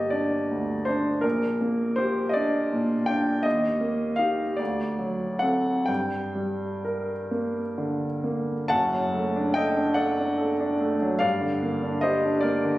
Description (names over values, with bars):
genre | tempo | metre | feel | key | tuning
classical, romantic nocturne for solo piano | 41-56 BPM (dotted quarters) | 12/8 | rubato | G minor | A4 = 440 Hz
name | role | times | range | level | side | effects
clear grand piano | solo | 0.0-12.8 s | F#1 to A5 | -23 LUFS | equal | none
room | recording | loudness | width
moderate recital hall reverb, RT60 1.6 s | recorded on a phone in the room, club reverb | -23 LUFS | side -16 dB against mid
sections
0.0-8.7 A section; 8.7-12.8 B section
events
none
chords
0.0 Gm; 1.2 Gm/Bb; 3.5 Eb; 4.6 D7; 5.9 Gm; 8.7 D/F#; 11.2 Gm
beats
0.13 1.24 2.37 | 3.45 4.59 5.88 7.32 | 8.71 10.00 11.23 12.45